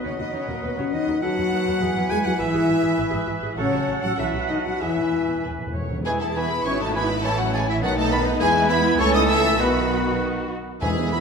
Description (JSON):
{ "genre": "quick classical-period movement for symphony orchestra", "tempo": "101 BPM", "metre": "2/4", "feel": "rubato", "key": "E major", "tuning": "A4 = 440 Hz", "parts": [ { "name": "warm symphonic violin section", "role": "melody", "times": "0.0-11.2 s", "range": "A#4 to E6", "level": "-30 LUFS", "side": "left 2 dB", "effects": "none" }, { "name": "clear clarinet", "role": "second line", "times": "0.0-11.2 s", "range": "A4 to G#5", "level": "-32 LUFS", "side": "equal", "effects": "none" }, { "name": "clear oboe", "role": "second line", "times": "0.0-11.2 s", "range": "A4 to A5", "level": "-32 LUFS", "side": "right 1 dB", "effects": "none" }, { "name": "concert flute", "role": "second line", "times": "0.0-11.2 s", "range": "E5 to E6", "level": "-31 LUFS", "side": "left 2 dB", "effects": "none" }, { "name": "rich studio violin section", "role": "second line", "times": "0.0-11.2 s", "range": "E4 to G#5", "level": "-31 LUFS", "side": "equal", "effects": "none" }, { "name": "warm bassoon", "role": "accompaniment", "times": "0.0-11.2 s", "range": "D#3 to F#3", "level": "-31 LUFS", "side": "right 2 dB", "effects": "none" }, { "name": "warm studio viola section", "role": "accompaniment", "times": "0.0-11.2 s", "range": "G#3 to F#5", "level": "-30 LUFS", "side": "equal", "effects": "none" }, { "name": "mellow French horn section", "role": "sustained chords", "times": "0.0-11.2 s", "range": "E3 to G#4", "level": "-26 LUFS", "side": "left 3 dB", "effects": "none" }, { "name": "rich studio double bass section", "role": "bass", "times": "0.0-11.2 s", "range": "G#1 to E2", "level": "-29 LUFS", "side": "right 4 dB", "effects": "none" }, { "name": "warm studio cello section", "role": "bass", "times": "0.0-10.5 s", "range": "A#2 to A4", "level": "-29 LUFS", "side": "right 2 dB", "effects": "none" }, { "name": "timpani", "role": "percussion", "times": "4.8-6.0, 10.8-11.2 s", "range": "E2", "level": "-31 LUFS", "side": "left 1 dB", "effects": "none" } ], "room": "wet scoring stage reverb, RT60 1.9 s", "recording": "none", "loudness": "-20 LUFS", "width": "side -5 dB against mid", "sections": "0.0-6.1 A section; 6.1-11.2 B section", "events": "timpani fill 4.8-6.1", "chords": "0.0 B/D#; 1.2 B7/D#; 1.8 E; 2.4 E/G#; 3.6 F#m/A; 4.2 B7; 4.8 E; 7.2 A; 7.8 B7; 8.4 E; 9.0 A/C#; 9.6 B" }